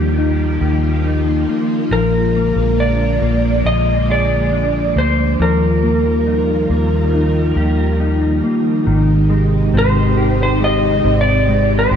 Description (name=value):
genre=dream pop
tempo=69 BPM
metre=4/4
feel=straight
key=unclear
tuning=A4 = 435 Hz
part: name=electric slide guitar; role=melody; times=0.0-12.0 s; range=G4 to Eb5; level=-19 LUFS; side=equal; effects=shimmer reverb, ping-pong delay
part: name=string machine, violas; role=sustained chords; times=0.0-12.0 s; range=C3 to G4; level=-20 LUFS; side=right 1 dB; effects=ensemble chorus, shimmer reverb
part: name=mellow electric guitar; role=arpeggios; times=0.0-12.0 s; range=Eb3 to Ab4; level=-19 LUFS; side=left 2 dB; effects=ensemble chorus, shimmer reverb, ping-pong delay
part: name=vintage muted fingered electric bass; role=bass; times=0.0-12.0 s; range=Ab1 to Eb2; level=-17 LUFS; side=equal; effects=none
room=moderate plate reverb, RT60 3.2 s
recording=dark, warm production, faint mains hum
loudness=-13 LUFS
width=side -8 dB against mid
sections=0.0-8.9 A section; 8.9-12.0 B section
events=none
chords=0.0 Ebadd9; 1.9 Bb7; 5.4 Ebadd9; 8.9 Abmaj7